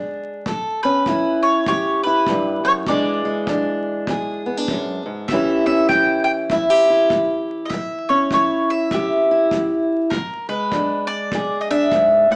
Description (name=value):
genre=acoustic country blues, solo or duo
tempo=100 BPM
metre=4/4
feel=swing 61% on 8ths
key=unclear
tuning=A4 = 440 Hz
part: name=fingerpicked steel-string acoustic guitar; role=accompaniment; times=0.0-12.4 s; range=E2 to G#4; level=-23 LUFS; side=equal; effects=none
part: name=mandolin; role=melody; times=0.5-12.4 s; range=A4 to G5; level=-21 LUFS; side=equal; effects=none
part: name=kick drum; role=drums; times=0.5-12.1 s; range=none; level=-30 LUFS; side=equal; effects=none
room=moderate large studio reverb, RT60 1.0 s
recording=band playing live in one room, vinyl crackle, small speaker sound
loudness=-19 LUFS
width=mono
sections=0.0-12.4 A section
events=none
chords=0.5 A7; 2.9 E7; 5.3 A7; 10.1 E7